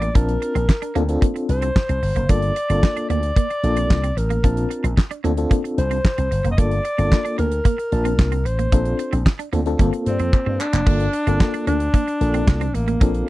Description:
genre	early-eighties boogie funk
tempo	112 BPM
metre	4/4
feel	straight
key	G minor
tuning	A4 = 440 Hz
part	breathy alto saxophone	melody	0.0-13.3 s	Bb3 to Eb5	-24 LUFS	equal	slapback echo
part	semi-hollow electric guitar	riff	0.0-13.1 s	Bb3 to D4	-28 LUFS	right 8 dB	analog chorus
part	slap bass with an envelope filter	bass	0.0-13.2 s	F1 to G2	-21 LUFS	equal	none
part	damped 70s drum kit	drums	0.0-13.3 s	crash cymbal, handclaps, hi-hat, kick drum, snare drum	-17 LUFS	equal	none
part	FM electric piano with tremolo	accompaniment	0.1-13.3 s	Bb3 to A5	-24 LUFS	left 3 dB	none
room	little or no reverb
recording	dry, close 1970s-style studio recording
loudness	-17 LUFS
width	side -17 dB against mid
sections	0.0-10.9 A section; 10.9-13.3 A section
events	drum fill 10.3-10.9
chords	0.2 Bbmaj9; 2.3 Gm7; 4.4 Bbmaj9; 6.6 Gm7; 8.7 Bbmaj9; 9.8 Gm11; 10.9 Gm7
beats	| 0.15 0.69 1.22 1.76 | 2.30 2.83 3.37 3.90 | 4.44 4.97 5.51 6.05 | 6.58 7.12 7.65 8.19 | 8.72 9.26 9.80 10.33 | 10.87 11.40 11.94 12.47 | 13.01

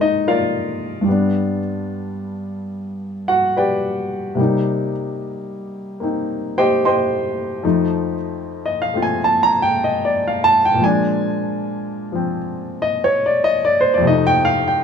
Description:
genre	solo jazz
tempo	74 BPM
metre	4/4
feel	swing 67% on 8ths, rubato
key	Bb mixolydian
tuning	A4 = 440 Hz
part	warm baby grand piano	solo	0.0-14.8 s	F2 to C6	-17 LUFS	left 1 dB	none
room	moderate studio reverb, RT60 0.6 s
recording	none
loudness	-16 LUFS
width	side -6 dB against mid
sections	0.0-14.8 A section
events	grand piano solo 0.0-14.8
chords	0.0 Bb7; 1.1 G7; 4.4 Cm7; 7.6 F7; 10.8 Bb7; 14.0 F7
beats	0.25 | 1.06 1.88 2.71 3.55 | 4.38 5.21 6.03 6.84 | 7.64 8.44 9.22 10.01 | 10.81 11.60 12.40 13.21 | 14.03

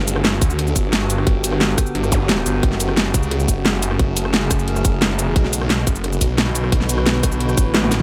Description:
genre	dark technical drum and bass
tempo	176 BPM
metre	4/4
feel	straight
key	unclear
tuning	A4 = 440 Hz
part	metallic inharmonic drone	sustained chords	0.0-8.0 s	C#3 to B4	-26 LUFS	equal	chorus, built-in reverb, sidechain pumping
part	snarling distorted saw bass	bass	0.0-8.0 s	F#1 to D2	-23 LUFS	equal	tube saturation, sidechain pumping
part	dubstep drum kit	drums	0.1-8.0 s	hi-hat, rim click, shaker, snare drum, toms	-22 LUFS	equal	small room ambience
part	electronic kick drum	drums	0.4-7.6 s	none	-20 LUFS	equal	small room ambience
part	zap	sound effects	2.1-2.2 s	none	-31 LUFS	equal	none
room	little or no reverb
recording	none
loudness	-18 LUFS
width	mono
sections	0.0-8.0 A section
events	drum fill 7.7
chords	0.0 Gmaj7; 2.6 F#madd9; 5.4 Bm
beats	0.24 0.59 0.93 | 1.27 1.61 1.95 2.29 | 2.63 2.97 3.31 3.65 | 4.00 4.34 4.68 5.02 | 5.36 5.70 6.04 6.38 | 6.72 7.06 7.40 7.75

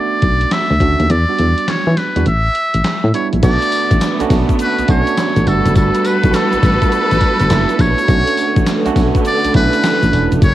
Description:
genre	R&B, new jack swing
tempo	103 BPM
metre	4/4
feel	swing 65% on 16ths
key	B minor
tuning	A4 = 441 Hz
part	trumpet with metal mute	melody	0.0-10.5 s	A4 to E5	-17 LUFS	left 1 dB	none
part	barky tine electric piano	accompaniment	0.0-10.4 s	G3 to F#4	-20 LUFS	right 8 dB	cassette tape
part	solid FM bass	bass	0.2-10.5 s	E1 to E3	-15 LUFS	left 1 dB	none
part	gated 80s digital drum machine	drums	0.2-10.5 s	crash cymbal, handclaps, hi-hat, kick drum, snare drum, tambourine	-17 LUFS	left 1 dB	gated reverb, gated reverb snare, cassette tape
part	warm studio string section	sustained chords	3.4-10.5 s	D3 to B4	-20 LUFS	left 1 dB	cassette tape
part	tube shaker	percussion	3.4-10.5 s	none	-43 LUFS	left 11 dB	none
room	little or no reverb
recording	home recording on cassette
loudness	-12 LUFS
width	side -14 dB against mid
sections	0.0-3.4 A section; 3.4-10.5 B section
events	kick muted 1.1-3.4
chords	0.0 Bm7; 1.1 Em7; 2.3 A7sus4; 3.4 Bm9; 5.5 Gmaj9; 8.1 Bm9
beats	0.52 | 1.10 1.68 2.26 2.85 | 3.43 4.01 4.59 5.18 | 5.76 6.34 6.92 7.51 | 8.09 8.67 9.25 9.84 | 10.42

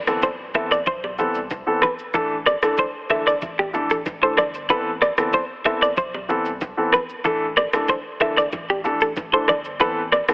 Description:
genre	afrobeats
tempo	94 BPM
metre	4/4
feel	straight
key	A minor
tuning	A4 = 440 Hz
part	impact	sound effects	0.0-2.1 s	none	-47 LUFS	equal	none
part	warm grand piano	accompaniment	0.1-10.3 s	E3 to A4	-23 LUFS	equal	none
part	saturated sub bass	bass	0.1-10.3 s	G1 to C2	-44 LUFS	equal	none
part	afro-pop drum kit	drums	0.1-10.3 s	kick drum, rim click, shaker	-24 LUFS	equal	overdrive, vintage 12-bit sampler grit
part	electric guitar at the edge of break-up	riff	0.2-10.2 s	G4 to E5	-21 LUFS	equal	harmonic tremolo, tape echo
part	bongos and congas	percussion	0.2-10.3 s	none	-32 LUFS	right 1 dB	none
room	moderate lush hall reverb, RT60 2.6 s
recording	heavily compressed radio sound, multiband compression, telephone sound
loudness	-18 LUFS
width	side -28 dB against mid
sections	0.0-10.3 A section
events	impact 0.0-2.1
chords	0.0 Amadd9; 2.1 Dsus2; 4.7 Amadd9; 7.2 Dsus2; 9.8 Amadd9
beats	0.23 0.87 1.50 | 2.14 2.78 3.42 4.06 | 4.70 5.33 5.97 6.61 | 7.25 7.89 8.53 9.16 | 9.80

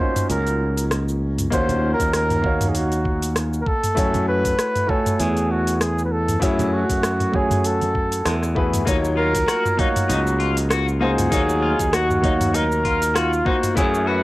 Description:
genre	sunset chillout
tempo	98 BPM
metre	4/4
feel	swing 56% on 16ths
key	unclear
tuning	A4 = 440 Hz
part	warm flugelhorn	melody	0.0-14.2 s	Fb4 to C5	-23 LUFS	equal	cassette tape, tape echo
part	warm grand piano	accompaniment	0.0-14.2 s	Gb3 to Ab5	-25 LUFS	equal	auto-pan, cassette tape
part	smooth R&B drum kit	drums	0.2-14.0 s	cabasa, hi-hat, rim click, toms	-25 LUFS	equal	studio reverb, cassette tape
part	modern bright fingered electric bass	bass	0.3-14.2 s	Db2 to Gb2	-22 LUFS	equal	transformer saturation
part	electronic kick drum	drums	1.5-13.9 s	none	-24 LUFS	equal	studio reverb, cassette tape
part	congas	percussion	1.7-7.9 s	none	-30 LUFS	right 4 dB	none
part	electric guitar at the edge of break-up	arpeggios	8.9-14.2 s	Eb4 to Gb4	-27 LUFS	left 6 dB	vibrato effect, cassette tape, tape echo
room	moderate studio ambience, RT60 0.5 s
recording	home recording on cassette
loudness	-18 LUFS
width	side -18 dB against mid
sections	0.0-8.9 A section; 8.9-14.2 B section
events	band accent 8.3-8.6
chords	0.0 Ebm9; 4.0 Gbm9; 8.9 Ebm9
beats	0.30 0.91 | 1.52 2.13 2.75 3.36 | 3.97 4.58 5.20 5.81 | 6.42 7.03 7.64 8.26 | 8.87 9.48 10.09 10.71 | 11.32 11.93 12.54 13.15 | 13.77

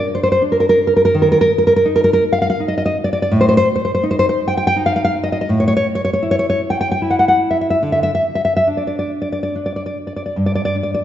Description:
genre	romantic piece for solo classical guitar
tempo	68-85 BPM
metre	3/4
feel	rubato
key	unclear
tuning	A4 = 440 Hz
part	nylon-string guitar	solo	0.0-11.0 s	G2 to G5	-14 LUFS	equal	none
room	wet scoring stage reverb, RT60 1.9 s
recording	recorded in a church or concert hall, nothing above 7.6 kHz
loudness	-14 LUFS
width	side -11 dB against mid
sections	0.0-10.4 A section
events	none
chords	0.0 Bb; 1.2 N.C.; 3.3 Am7b5 (rootless); 5.5 N.C.; 10.4 G5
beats	0.43 | 1.16 1.88 2.60 | 3.34 4.05 4.77 | 5.50 6.23 7.00 | 7.81 8.67 9.54 | 10.38

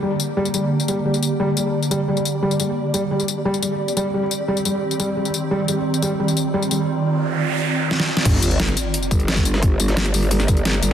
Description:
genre	dark technical drum and bass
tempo	175 BPM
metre	4/4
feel	straight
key	G minor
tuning	A4 = 441 Hz
part	swarming drone	sustained chords	0.0-10.9 s	D3 to D5	-22 LUFS	right 1 dB	built-in reverb, vintage 12-bit sampler grit, sidechain pumping
part	felt-muted upright piano	arpeggios	0.0-6.8 s	G3	-23 LUFS	equal	sidechain pumping, low-pass filter, dub echo
part	downlifter, noise sweep and sub drop	sound effects	0.0, 7.1-9.6 s	none	-25 LUFS	right 1 dB	none
part	dubstep drum kit	drums	0.2-10.9 s	crash cymbal, hi-hat, snare drum, tambourine	-23 LUFS	left 2 dB	overdrive
part	growl bass	bass	8.3-10.9 s	G1	-20 LUFS	equal	chorus, overdrive
part	breakbeat sampler-style drum kit	drums	8.3-10.9 s	hi-hat, snare drum	-30 LUFS	equal	high-pass filter on hats, high-pass filter on snare
part	electronic kick drum	drums	8.3-10.6 s	none	-18 LUFS	equal	none
room	moderate lush hall reverb, RT60 1.8 s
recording	dense, heavily limited modern master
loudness	-18 LUFS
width	side -9 dB against mid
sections	0.0-8.3 A section; 8.3-10.9 B section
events	noise sweep 7.1-8.3; drum fill 7.9-8.3; drop 8.3-10.9; impact 8.3-9.6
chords	0.0 Gm; 2.8 Cmadd9; 8.3 Gm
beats	| 0.03 0.37 0.71 1.05 | 1.40 1.74 2.08 2.42 | 2.77 3.11 3.45 3.80 | 4.14 4.48 4.83 5.17 | 5.51 5.85 6.20 6.54 | 6.88 7.22 7.57 7.91 | 8.25 8.60 8.94 9.28 | 9.62 9.97 10.31 10.65

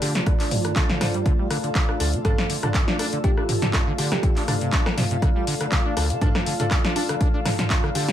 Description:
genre	acid house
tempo	121 BPM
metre	4/4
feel	swing 54% on 16ths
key	D minor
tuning	A4 = 440 Hz
part	dark analog pad	sustained chords	0.0-8.1 s	A3 to F5	-31 LUFS	left 1 dB	chorus, sidechain pumping
part	acid bass, saw	riff	0.0-8.1 s	D2 to D4	-28 LUFS	equal	overdrive, wide subtle chorus, cassette tape, sidechain pumping
part	bright baby grand piano	stabs	0.0-8.1 s	D4 to C5	-34 LUFS	left 1 dB	dub echo
part	punchy analog drum machine	drums	0.0-8.1 s	handclaps, hi-hat, rim click, snare drum, toms	-25 LUFS	equal	none
part	granular cloud pad	texture	0.0-8.1 s	F4 to A5	-32 LUFS	right 1 dB	built-in reverb, sidechain pumping
part	electronic kick drum	drums	0.3-7.8 s	none	-22 LUFS	equal	none
part	thumb-piano-like synth pluck	melody	2.2-4.3 s	G4 to A4	-33 LUFS	equal	chorus, tape echo
room	light reverb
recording	none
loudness	-20 LUFS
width	side -11 dB against mid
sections	0.0-8.1 A section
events	none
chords	0.0 Dm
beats	0.27 0.76 | 1.26 1.75 2.25 2.75 | 3.24 3.74 4.23 4.73 | 5.22 5.72 6.22 6.71 | 7.21 7.70

